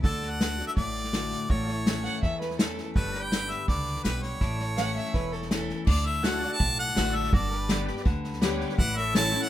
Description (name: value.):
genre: honky-tonk and classic country.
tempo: 165 BPM.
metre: 4/4.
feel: straight.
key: D major.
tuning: A4 = 440 Hz.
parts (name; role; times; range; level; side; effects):
bright harmonica; melody; 0.0-9.5 s; A4 to A5; -30 LUFS; equal; none.
picked steel-string acoustic guitar; accompaniment; 0.0-9.5 s; E2 to G4; -33 LUFS; left 5 dB; none.
pedal steel guitar; sustained chords; 0.0-9.5 s; D4 to D5; -39 LUFS; right 1 dB; none.
upright bass; bass; 0.0-9.3 s; E1 to E2; -32 LUFS; equal; none.
unplugged drum kit; drums; 0.0-9.5 s; crash cymbal, hi-hat, kick drum, snare drum; -28 LUFS; equal; none.
dark fiddle; second line; 2.0-5.8 s; A4 to F#5; -34 LUFS; right 3 dB; none.
bright tonewheel organ; accompaniment; 6.2-9.5 s; E4 to D5; -37 LUFS; right 5 dB; slow rotary speaker, chorus vibrato.
room: little or no reverb.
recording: minimal, uncompressed stereo recording.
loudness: -25 LUFS.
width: side -13 dB against mid.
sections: 0.0-5.9 A section; 5.9-9.5 B section.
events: none.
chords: 0.0 D; 1.5 A; 3.0 G; 4.4 A; 5.9 D; 7.3 G; 8.8 A.